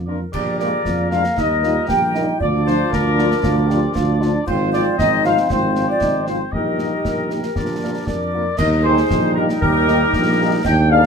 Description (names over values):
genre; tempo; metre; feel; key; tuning
military-style march for wind band; 116 BPM; 2/4; straight; Bb major, Eb major from 4.5 s; A4 = 441 Hz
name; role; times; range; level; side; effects
warm woodwind section; second line; 0.0-11.1 s; F4 to G5; -24 LUFS; left 2 dB; none
mellow trombone section; sustained chords; 0.0-11.1 s; F3 to Eb4; -25 LUFS; equal; none
mellow tuba; bass; 0.0-11.1 s; Ab1 to F2; -20 LUFS; right 2 dB; none
dark trumpet section; melody; 0.1-11.1 s; Bb4 to G5; -23 LUFS; left 3 dB; none
mellow hollow small flute group; second line; 0.1-11.1 s; G4 to G5; -23 LUFS; equal; none
mellow French horn section; accompaniment; 0.1-11.0 s; F3 to Ab4; -24 LUFS; left 3 dB; none
clear euphonium; second line; 0.3-8.3 s; D4 to G4; -26 LUFS; right 3 dB; none
clash cymbals, concert bass drum and concert snare drum; drums; 0.3-11.1 s; none; -27 LUFS; equal; none
room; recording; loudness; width
moderate booth ambience, RT60 0.2 s; minimal, uncompressed stereo recording; -16 LUFS; side -6 dB against mid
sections
0.3-8.6 A section; 8.6-11.1 B section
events
none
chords
0.3 Bb7; 1.4 Eb; 2.4 Bb/D; 4.5 Fm/Ab; 6.5 Eb/Bb; 7.6 Bb; 8.6 Eb